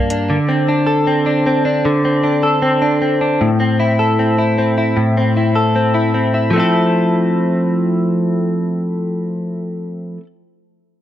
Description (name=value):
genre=indie pop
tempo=77 BPM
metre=4/4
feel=straight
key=F major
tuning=A4 = 440 Hz
part: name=direct-recorded clean electric guitar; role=accompaniment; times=0.0-10.3 s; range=G2 to Bb4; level=-14 LUFS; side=equal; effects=analog chorus, warbly pitch drift, plate reverb
room=moderate studio reverb, RT60 0.6 s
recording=none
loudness=-13 LUFS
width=side -12 dB against mid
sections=0.0-6.5 A section; 6.5-9.7 B section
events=none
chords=0.3 D5; 3.4 Am; 6.5 Fmaj7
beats=| 0.29 1.06 1.84 2.62 | 3.40 4.18 4.97 5.75 | 6.53 7.31 8.09 8.87